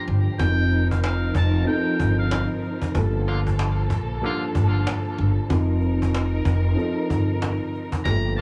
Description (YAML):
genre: hip hop, boom-bap hip-hop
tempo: 94 BPM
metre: 4/4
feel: swing 61% on 16ths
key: unclear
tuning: A4 = 440 Hz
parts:
  - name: trumpet with metal mute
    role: melody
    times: 0.0-2.5, 8.1-8.4 s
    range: F5 to Bb5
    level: -31 LUFS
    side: equal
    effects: high-pass filter, low-pass filter, digital delay
  - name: dark upright piano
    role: accompaniment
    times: 0.0-8.4 s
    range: G2 to Bb4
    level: -29 LUFS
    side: equal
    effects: cassette tape, high-pass filter, low-pass filter
  - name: dark studio string section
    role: sustained chords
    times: 0.0-8.4 s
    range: Bb2 to Bb4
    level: -34 LUFS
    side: equal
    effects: high-pass filter, low-pass filter
  - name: upright bass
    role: bass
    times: 0.1-8.4 s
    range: F1 to Bb1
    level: -24 LUFS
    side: equal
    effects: none
  - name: cajon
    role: drums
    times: 0.1-8.4 s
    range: none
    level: -31 LUFS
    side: equal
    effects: none
  - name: clear horn section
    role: stabs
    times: 3.3-4.4, 8.4 s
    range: D3 to F4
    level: -35 LUFS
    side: equal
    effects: high-pass filter, low-pass filter, digital delay
room: small room ambience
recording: none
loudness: -23 LUFS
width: mono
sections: 0.0-8.4 A section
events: none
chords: 0.4 F7sus4; 2.9 Gm9; 5.5 F7sus4